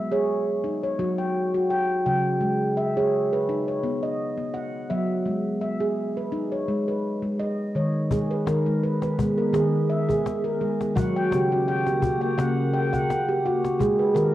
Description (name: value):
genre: world meditative, meditative tuned percussion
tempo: 84 BPM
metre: 4/4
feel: swing 54% on 16ths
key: G# minor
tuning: A4 = 436 Hz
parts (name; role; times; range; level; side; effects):
- handpan; arpeggios; 0.0-14.3 s; C#3 to G5; -22 LUFS; equal; cassette tape
- glassy FM pad; sustained chords; 8.9-14.3 s; C#3 to A#4; -31 LUFS; left 1 dB; ensemble chorus, built-in reverb, phaser, cassette tape
- cajon; percussion; 8.1-14.3 s; none; -29 LUFS; left 3 dB; none
room: wet spring reverb, RT60 1.3 s, small room ambience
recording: home recording on cassette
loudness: -22 LUFS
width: side -14 dB against mid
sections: 0.0-8.1 A section; 8.1-14.3 B section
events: none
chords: 0.0 G#5; 1.0 F#5; 2.4 G#m; 3.8 B; 5.3 G#m; 11.0 F#; 13.8 G#m